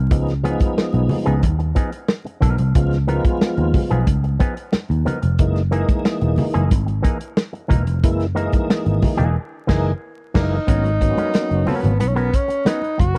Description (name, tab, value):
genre	funk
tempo	91 BPM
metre	4/4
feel	straight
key	G# dorian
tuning	A4 = 440 Hz
part	picked electric bass	bass	0.0-13.1 s	E1 to D#2	-21 LUFS	equal	none
part	tonewheel organ	stabs	0.1-11.9 s	E3 to E#4	-25 LUFS	equal	overdrive, chorus vibrato, slow rotary speaker
part	warm soul drum kit	drums	0.1-13.2 s	crash cymbal, hi-hat, kick drum, snare drum	-21 LUFS	equal	none
part	congas	percussion	0.1-13.1 s	none	-30 LUFS	equal	none
part	electric guitar with an envelope filter	accompaniment	0.4-13.2 s	E3 to B4	-29 LUFS	equal	spring reverb
part	breathy tenor saxophone	melody	10.3-13.2 s	B3 to F#4	-24 LUFS	equal	none
room	little or no reverb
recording	vinyl crackle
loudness	-19 LUFS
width	mono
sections	0.0-10.7 A section; 10.7-13.2 B section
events	band accent 9.4-10.7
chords	0.1 C#9; 5.4 F#13; 10.7 G#m11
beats	| 0.11 0.77 1.43 2.09 | 2.75 3.41 4.07 4.73 | 5.39 6.05 6.72 7.38 | 8.04 8.70 9.36 10.02 | 10.68 11.34 12.00 12.66